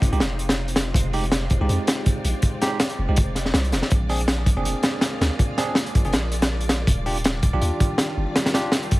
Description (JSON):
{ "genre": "drum and bass, jungle", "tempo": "162 BPM", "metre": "4/4", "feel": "swing 55% on 16ths", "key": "F dorian", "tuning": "A4 = 439 Hz", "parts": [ { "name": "soft string machine", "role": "sustained chords", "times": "0.0-9.0 s", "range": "Eb3 to D5", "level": "-32 LUFS", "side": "equal", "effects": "ensemble chorus" }, { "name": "long sustained 808-style bass", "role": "bass", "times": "0.0-9.0 s", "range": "Eb1 to F2", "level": "-24 LUFS", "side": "equal", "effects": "none" }, { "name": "crunchy breakbeat drum kit", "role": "drums", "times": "0.0-9.0 s", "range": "hi-hat, kick drum, snare drum", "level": "-21 LUFS", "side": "equal", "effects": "none" }, { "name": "bell-like tine electric piano", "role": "stabs", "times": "0.1-8.7 s", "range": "Ab3 to Ab4", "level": "-29 LUFS", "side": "right 2 dB", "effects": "medium stereo tremolo, dub echo" } ], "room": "small room ambience", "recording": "vinyl crackle", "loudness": "-19 LUFS", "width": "side -19 dB against mid", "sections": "0.0-9.0 A section", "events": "none", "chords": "0.0 Fm7; 3.9 Bb7; 6.9 Ebmaj9" }